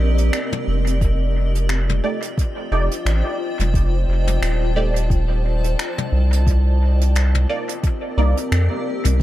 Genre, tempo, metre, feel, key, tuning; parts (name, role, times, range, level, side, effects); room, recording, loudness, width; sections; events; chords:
ambient dub; 88 BPM; 4/4; swing 57% on 16ths; F mixolydian; A4 = 440 Hz
granular cloud pad; sustained chords; 0.0-9.2 s; C4 to A5; -26 LUFS; left 1 dB; built-in reverb
round analog bass; bass; 0.0-9.2 s; Eb1 to F2; -17 LUFS; equal
jazz brush drum kit; drums; 0.2-9.2 s; finger snaps, hi-hat, toms; -28 LUFS; left 2 dB; dub echo
electronic kick drum; drums; 1.0-9.2 s; -19 LUFS; equal
filtered dub chord stab; stabs; 2.0-8.3 s; A3 to D5; -27 LUFS; right 2 dB; phaser, ensemble chorus, dub echo
little or no reverb; -17 LUFS; side -14 dB against mid
0.0-9.2 A section
0.0 Cm9; 1.0 F13; 6.5 Cm9